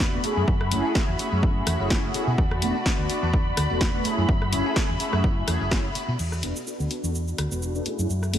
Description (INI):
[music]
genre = filtered disco house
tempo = 126 BPM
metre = 4/4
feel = swing 55% on 16ths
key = F# minor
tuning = A4 = 442 Hz
[part]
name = mellow synth brass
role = accompaniment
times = 0.0-8.4 s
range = A3 to A4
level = -29 LUFS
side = equal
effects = chorus, phaser, sidechain pumping, low-pass filter
[part]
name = dark studio violin section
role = sustained chords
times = 0.0-8.4 s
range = F#4 to B5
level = -31 LUFS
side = left 1 dB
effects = sidechain pumping, low-pass filter
[part]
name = hollow-body short-scale fingered electric bass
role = bass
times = 0.0-8.4 s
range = E1 to B2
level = -27 LUFS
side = equal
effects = sidechain pumping, low-pass filter
[part]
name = electronic kick drum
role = drums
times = 0.0-5.8 s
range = none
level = -24 LUFS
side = equal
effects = overdrive
[part]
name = punchy analog drum machine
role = drums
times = 0.0-8.4 s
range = cabasa, crash cymbal, hi-hat, rim click, snare drum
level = -30 LUFS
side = left 1 dB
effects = overdrive
[part]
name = tambourine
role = percussion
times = 0.0-6.2 s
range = none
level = -49 LUFS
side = right 5 dB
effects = none
[sound]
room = moderate church reverb, RT60 3.0 s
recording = dreamy mix soaked in reverb, lossy compression artefacts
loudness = -22 LUFS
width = side -10 dB against mid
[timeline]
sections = 0.0-6.2 A section; 6.2-8.4 B section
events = filter sweep 6.2-8.4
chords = 0.2 F#m7; 2.4 E9sus4; 4.0 F#m7; 6.2 E9sus4; 7.9 F#m7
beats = 0.00 | 0.48 0.95 1.43 1.91 | 2.38 2.86 3.33 3.81 | 4.29 4.76 5.24 5.72 | 6.19 6.67 7.14 7.62 | 8.10